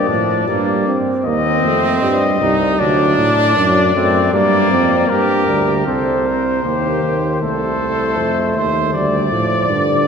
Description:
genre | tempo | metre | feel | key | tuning
classical, imitative canzona for brass ensemble | 78 BPM | 4/4 | straight | C minor | A4 = 439 Hz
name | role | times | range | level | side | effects
warm trumpet | melody | 0.0-10.1 s | Bb4 to Eb5 | -18 LUFS | left 6 dB | none
warm trumpet | second line | 0.0-10.1 s | Bb3 to D5 | -20 LUFS | right 3 dB | none
mellow trombone | accompaniment | 0.0-10.1 s | D3 to C4 | -20 LUFS | right 1 dB | none
warm tuba | bass | 0.0-10.1 s | C2 to A2 | -20 LUFS | right 1 dB | none
room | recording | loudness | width
wet church reverb, RT60 3.4 s | minimal, uncompressed stereo recording | -13 LUFS | side -6 dB against mid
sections
0.0-5.9 A section; 5.9-10.1 B section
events
none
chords
0.0 Gm; 1.2 Cm/Eb; 2.8 D; 4.3 Gm; 5.9 Cm; 7.4 Adim/C; 8.9 Dmadd11

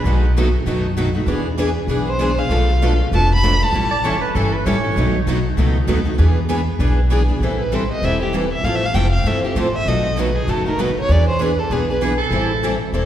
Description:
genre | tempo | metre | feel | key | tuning
acoustic string swing (jazz manouche) | 196 BPM | 4/4 | swing 58% on 8ths | A minor | A4 = 439 Hz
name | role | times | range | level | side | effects
clear soprano saxophone | second line | 0.0-0.3, 3.9-5.3, 12.0-12.8 s | G#4 to D5 | -24 LUFS | right 3 dB | none
picked steel-string acoustic guitar | accompaniment | 0.0-13.1 s | B2 to A4 | -22 LUFS | left 2 dB | none
upright bass | bass | 0.0-13.1 s | E1 to F#2 | -18 LUFS | equal | none
picked steel-string acoustic guitar | accompaniment | 0.1-13.1 s | B2 to B4 | -24 LUFS | right 3 dB | none
warm violin | melody | 2.1-4.2, 7.6-12.0 s | G4 to B5 | -22 LUFS | right 1 dB | none
room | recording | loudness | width
wet concert hall reverb, RT60 1.8 s | recorded in a church or concert hall | -16 LUFS | side -11 dB against mid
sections
0.0-7.4 A section; 7.4-13.1 B section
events
violin solo 7.4-13.1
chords
0.1 B7; 1.3 E7; 2.5 Bm7b5; 3.7 A7; 5.0 B7; 6.2 E7; 7.4 Am7; 8.6 Fmaj7; 9.9 B7; 11.1 E7; 12.3 Am7

